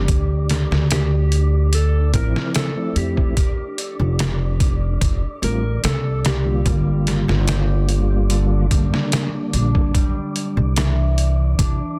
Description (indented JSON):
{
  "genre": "trip hop",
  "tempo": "73 BPM",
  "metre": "4/4",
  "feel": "straight",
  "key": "G dorian",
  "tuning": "A4 = 440 Hz",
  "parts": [
    { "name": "clean lap steel guitar", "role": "melody", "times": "0.0-7.5 s", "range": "G4 to Bb4", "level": "-32 LUFS", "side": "equal", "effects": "tape echo" },
    { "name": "mellow tonewheel organ", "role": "accompaniment", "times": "0.0-9.9 s", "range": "D3 to F4", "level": "-28 LUFS", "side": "equal", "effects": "chorus vibrato, stopped rotary speaker, tremolo, low-pass filter, tape echo" },
    { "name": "upright bass", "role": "bass", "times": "0.0-11.8 s", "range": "F1 to G2", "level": "-21 LUFS", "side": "equal", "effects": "none" },
    { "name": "wind-like tuned noise texture", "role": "texture", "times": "0.0-12.0 s", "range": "D4 to D5", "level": "-38 LUFS", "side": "equal", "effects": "built-in reverb" },
    { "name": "trip hop sampler-style drum kit", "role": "drums", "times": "0.1-11.8 s", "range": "hi-hat, kick drum, snare drum", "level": "-23 LUFS", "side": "equal", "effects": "none" },
    { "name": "concert harp", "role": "arpeggios", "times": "6.7-12.0 s", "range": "D3 to G4", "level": "-29 LUFS", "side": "equal", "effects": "tape echo" }
  ],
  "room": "digital ambience",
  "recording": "dense, heavily limited modern master",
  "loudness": "-19 LUFS",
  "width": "mono",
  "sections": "0.0-12.0 A section",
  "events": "none",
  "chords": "0.1 Dm7; 3.4 Fadd9; 6.7 Gm; 9.9 Cadd9"
}